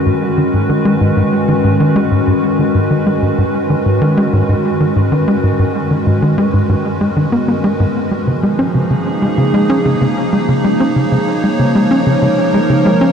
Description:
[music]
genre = ambient, sequencer-driven space music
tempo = 95 BPM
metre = 4/4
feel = straight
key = G# dorian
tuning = A4 = 438 Hz
[part]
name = evolving wavetable pad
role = sustained chords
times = 0.0-13.1 s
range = D#3 to C#5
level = -15 LUFS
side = equal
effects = chorus, built-in reverb, shimmer reverb
[part]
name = tight sequencer bass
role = riff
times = 0.1-13.1 s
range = G#2 to C#4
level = -14 LUFS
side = equal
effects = analog delay
[sound]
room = wet huge ambient reverb, RT60 7.5 s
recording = dark, warm production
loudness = -11 LUFS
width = side -7 dB against mid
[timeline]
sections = 0.0-13.1 A section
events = none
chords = 0.0 G#m; 8.0 C#

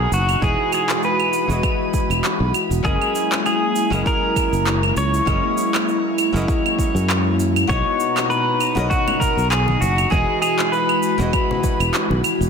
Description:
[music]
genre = sunset chillout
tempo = 99 BPM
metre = 4/4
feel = swing 55% on 16ths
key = unclear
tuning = A4 = 440 Hz
[part]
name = pedal steel guitar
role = melody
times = 0.0-12.2 s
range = F#4 to C#5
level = -22 LUFS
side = left 1 dB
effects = digital delay, shimmer reverb
[part]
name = nylon-string guitar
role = accompaniment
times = 0.0-12.5 s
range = E3 to D#5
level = -26 LUFS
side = moving between left 9 dB and right 9 dB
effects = auto-pan, low-pass filter, digital delay, shimmer reverb
[part]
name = airy breathy pad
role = sustained chords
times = 0.0-12.5 s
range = B2 to A#5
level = -24 LUFS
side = equal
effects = chorus, shimmer reverb
[part]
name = sustaining fretless electric bass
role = bass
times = 0.0-12.5 s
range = E1 to F#2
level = -20 LUFS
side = equal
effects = none
[part]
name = electronic cabasa, claves and handclaps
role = drums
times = 0.1-12.5 s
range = none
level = -24 LUFS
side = right 1 dB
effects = overdrive
[part]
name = electronic kick drum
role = drums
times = 0.4-11.8 s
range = none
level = -23 LUFS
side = equal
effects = overdrive
[part]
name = congas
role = percussion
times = 8.8-12.2 s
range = none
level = -29 LUFS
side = left 2 dB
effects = none
[sound]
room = moderate plate reverb, RT60 1.6 s, digital ambience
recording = dense, heavily limited modern master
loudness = -16 LUFS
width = side -6 dB against mid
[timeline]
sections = 0.0-12.5 A section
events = none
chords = 0.4 Emaj9; 2.8 F#13; 7.7 Bmaj7; 10.1 Emaj9

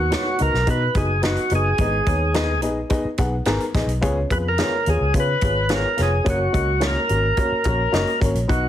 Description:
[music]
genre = uptempo 1960s-style soul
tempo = 107 BPM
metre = 4/4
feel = straight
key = unclear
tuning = A4 = 440 Hz
[part]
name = overdriven tonewheel organ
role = melody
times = 0.0-8.7 s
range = F#4 to B4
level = -22 LUFS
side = equal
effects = slow rotary speaker, slapback echo
[part]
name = dark upright piano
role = accompaniment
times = 0.0-8.7 s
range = G#2 to F#5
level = -24 LUFS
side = left 1 dB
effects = none
[part]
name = vintage muted fingered electric bass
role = bass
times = 0.0-8.7 s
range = E#1 to C#3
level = -23 LUFS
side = equal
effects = none
[part]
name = natural country drum kit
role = drums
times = 0.1-8.6 s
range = hi-hat, kick drum, snare drum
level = -24 LUFS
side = equal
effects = none
[sound]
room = light reverb, small room ambience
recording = heavily compressed radio sound, multiband compression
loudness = -18 LUFS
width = side -11 dB against mid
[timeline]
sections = 0.0-8.7 A section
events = none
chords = 0.0 B; 1.8 G#m; 4.0 C#7; 6.3 F#

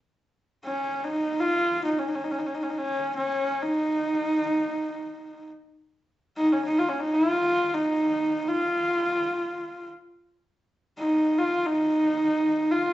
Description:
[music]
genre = mongolian traditional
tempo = free time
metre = none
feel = none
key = unclear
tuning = A4 = 440 Hz
[part]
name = rich horsehead fiddle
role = solo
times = 0.7-12.9 s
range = Db4 to F4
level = -23 LUFS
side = equal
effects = none
[sound]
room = wet large studio reverb, RT60 0.8 s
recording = band playing live in one room, nothing above 7.9 kHz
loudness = -23 LUFS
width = side -14 dB against mid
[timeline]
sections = 0.1-12.9 A section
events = none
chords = none

